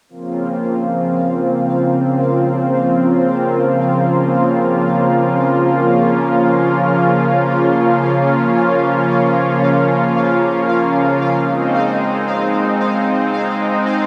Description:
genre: ambient, sequencer-driven space music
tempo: free time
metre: none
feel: none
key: unclear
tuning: A4 = 439 Hz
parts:
  - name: lush unison pad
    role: sustained chords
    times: 0.1-14.1 s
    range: Db3 to F4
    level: -16 LUFS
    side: equal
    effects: chorus
  - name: pulsing gated texture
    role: texture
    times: 0.8-14.1 s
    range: F5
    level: -29 LUFS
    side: equal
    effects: chorus, built-in reverb
room: wet huge ambient reverb, RT60 7.6 s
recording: dreamy mix soaked in reverb, cassette tape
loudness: -15 LUFS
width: mono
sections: 0.1-14.1 A section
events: none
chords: 0.1 Bbmadd9; 11.4 Ab

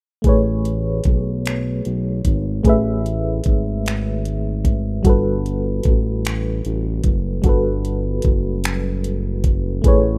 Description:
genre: slow six-eight R&B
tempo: 50 BPM (dotted quarters)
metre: 6/8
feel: straight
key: A major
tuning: A4 = 440 Hz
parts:
  - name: FM electric piano with tremolo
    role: accompaniment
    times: 0.2-10.2 s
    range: G3 to E5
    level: -25 LUFS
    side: equal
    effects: none
  - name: smooth synth bass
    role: bass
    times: 0.2-10.2 s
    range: F#1 to B1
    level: -24 LUFS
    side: equal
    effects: none
  - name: smooth R&B drum kit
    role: drums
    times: 0.2-10.0 s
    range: finger snaps, hi-hat, kick drum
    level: -20 LUFS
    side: equal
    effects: none
room: little or no reverb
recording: rough home demo mix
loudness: -20 LUFS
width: mono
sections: 0.2-9.8 A section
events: none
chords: 0.2 Amaj9; 5.0 Gmaj9

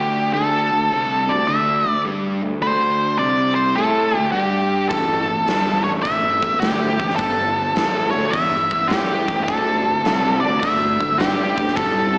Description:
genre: blues rock power trio and southern rock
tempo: 105 BPM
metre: 4/4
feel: swing 66% on 8ths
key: unclear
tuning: A4 = 440 Hz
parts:
  - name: octave-fuzz lead guitar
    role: melody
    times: 0.0-12.2 s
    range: G4 to E5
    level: -21 LUFS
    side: equal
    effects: distortion, slapback echo
  - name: overdriven semi-hollow guitar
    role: riff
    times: 0.0-12.2 s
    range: G2 to A4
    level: -28 LUFS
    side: equal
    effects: slapback echo
  - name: fuzz picked electric bass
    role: bass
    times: 0.0-12.2 s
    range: G1 to A2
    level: -28 LUFS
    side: equal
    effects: overdrive
  - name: huge arena drum kit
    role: drums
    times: 4.9-11.9 s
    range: hi-hat, kick drum, snare drum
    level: -26 LUFS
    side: equal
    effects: none
room: light reverb, studio ambience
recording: live gig heard through the venue's PA, recital hall reverb, small speaker sound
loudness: -19 LUFS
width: mono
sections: 0.0-12.2 A section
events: none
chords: 0.0 D5; 3.2 C5; 3.8 D5; 4.3 G5; 4.9 A5; 7.2 G5; 7.8 A; 8.3 E5; 8.9 A5; 9.5 D5

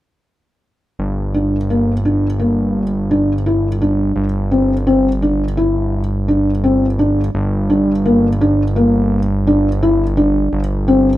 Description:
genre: contemporary instrumental, contemporary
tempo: 170 BPM (eighths)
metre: 9/8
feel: straight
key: G dorian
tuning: A4 = 442 Hz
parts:
  - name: fat analog bass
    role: bass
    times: 1.0-11.2 s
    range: G1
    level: -17 LUFS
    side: equal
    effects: none
  - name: felt-muted upright piano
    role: arpeggios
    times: 1.3-11.1 s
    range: Bb3 to E4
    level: -15 LUFS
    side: left 1 dB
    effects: none
room: light reverb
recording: none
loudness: -13 LUFS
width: side -15 dB against mid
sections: 1.0-7.3 A section; 7.3-11.2 B section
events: none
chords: 1.0 Gm; 4.2 Cadd9/G; 7.3 Gm; 10.5 C5/G

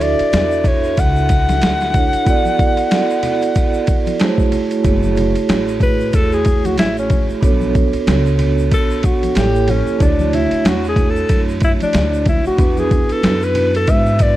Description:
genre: hip hop, jazz-hop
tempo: 93 BPM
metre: 4/4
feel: swing 58% on 16ths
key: F# minor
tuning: A4 = 441 Hz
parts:
  - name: breathy alto saxophone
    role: melody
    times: 0.0-14.4 s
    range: C#4 to F#5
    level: -19 LUFS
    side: left 2 dB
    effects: none
  - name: vibraphone with soft mallets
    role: accompaniment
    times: 0.0-14.4 s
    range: G#3 to E5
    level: -19 LUFS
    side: right 5 dB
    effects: none
  - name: upright bass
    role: bass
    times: 0.0-14.4 s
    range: F#1 to G#2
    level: -20 LUFS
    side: equal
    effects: none
  - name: dusty soul sampler-style drum kit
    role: drums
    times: 0.0-14.4 s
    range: hi-hat, kick drum, ride cymbal, snare drum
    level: -17 LUFS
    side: equal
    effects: overdrive
  - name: tube shaker and congas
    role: percussion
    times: 0.0-14.4 s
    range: none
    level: -30 LUFS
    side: left 4 dB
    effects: none
room: studio ambience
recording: dark, warm production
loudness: -13 LUFS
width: side -14 dB against mid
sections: 0.0-4.8 A section; 4.8-14.4 B section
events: alto saxophone solo 4.8-14.4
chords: 0.0 Dmaj9; 2.3 E9sus4; 4.2 F#m9; 4.8 F#m7; 7.4 Bm9; 9.4 A7b9; 10.0 Dmaj9; 12.6 Esus2

